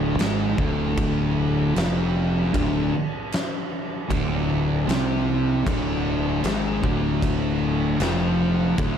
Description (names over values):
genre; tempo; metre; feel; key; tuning
stoner and doom metal; 77 BPM; 4/4; straight; D minor; A4 = 439 Hz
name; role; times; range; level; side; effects
fuzz guitar; riff; 0.0-9.0 s; D2 to C4; -30 LUFS; right 1 dB; distortion
thick fuzz guitar; riff; 0.0-9.0 s; D2 to C4; -26 LUFS; left 8 dB; distortion
thick fuzz guitar; riff; 0.0-9.0 s; D2 to C4; -26 LUFS; right 8 dB; distortion
fuzz fingered electric bass; bass; 0.0-9.0 s; D1 to C2; -27 LUFS; equal; overdrive
oversized low-tuned drum kit; drums; 0.2-9.0 s; crash cymbal, kick drum, snare drum; -27 LUFS; equal; none
room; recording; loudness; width
studio reverb; dark, warm production; -20 LUFS; side -8 dB against mid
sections
0.0-9.0 A section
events
none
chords
0.0 Dm